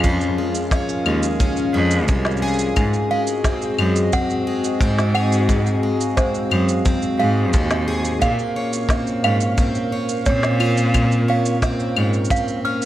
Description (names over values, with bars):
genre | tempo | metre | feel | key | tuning
folktronica | 88 BPM | 4/4 | straight | unclear | A4 = 441 Hz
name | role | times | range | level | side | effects
warbly tape-like pad | sustained chords | 0.0-12.9 s | C4 to F5 | -26 LUFS | left 1 dB | chorus, built-in reverb, vintage 12-bit sampler grit
picked plugged-in twelve-string acoustic guitar | arpeggios | 0.0-12.9 s | Ab2 to Ab4 | -23 LUFS | left 1 dB | tape echo
clear cello | bass | 0.0-12.1 s | C2 to Bb2 | -22 LUFS | equal | none
electronic shaker, snare drum and claves | drums | 0.0-12.9 s | none | -27 LUFS | left 1 dB | none
kick drum | drums | 0.0-12.4 s | none | -22 LUFS | equal | none
toy piano | second line | 3.1-12.9 s | C5 to F6 | -26 LUFS | right 3 dB | vintage 12-bit sampler grit, tape echo
room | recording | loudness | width
light reverb, small room ambience | none | -17 LUFS | side -13 dB against mid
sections
0.0-12.9 A section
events
none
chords
0.0 Db; 2.8 Ab7; 8.2 Bbmadd9